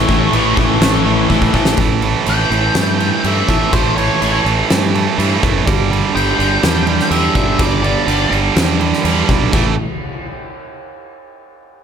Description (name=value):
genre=quiet-loud alternative rock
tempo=124 BPM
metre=4/4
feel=straight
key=A mixolydian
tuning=A4 = 438 Hz
part: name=octave-fuzz lead guitar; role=melody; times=0.0-8.3 s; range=C5 to G5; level=-21 LUFS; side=left 3 dB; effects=distortion, tape echo
part: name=biting overdriven guitar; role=riff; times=0.0-1.8 s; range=A2 to A3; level=-18 LUFS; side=left 18 dB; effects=none
part: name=tight distorted guitar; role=riff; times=0.0-9.7 s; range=G2 to A3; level=-17 LUFS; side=right 8 dB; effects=distortion
part: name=fuzz fingered electric bass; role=bass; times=0.0-9.8 s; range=F#1 to G2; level=-19 LUFS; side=left 1 dB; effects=overdrive
part: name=oversized low-tuned drum kit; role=drums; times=0.1-9.6 s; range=crash cymbal, kick drum, snare drum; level=-17 LUFS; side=left 1 dB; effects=none
room=little or no reverb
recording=none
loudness=-12 LUFS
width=side -7 dB against mid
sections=0.0-1.8 A section; 1.8-9.5 B section; 9.5-11.5 C section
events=drum fill 1.3-1.8; lead electric guitar solo 1.8-9.5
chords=0.0 A; 1.8 A5; 5.7 G5; 9.5 A5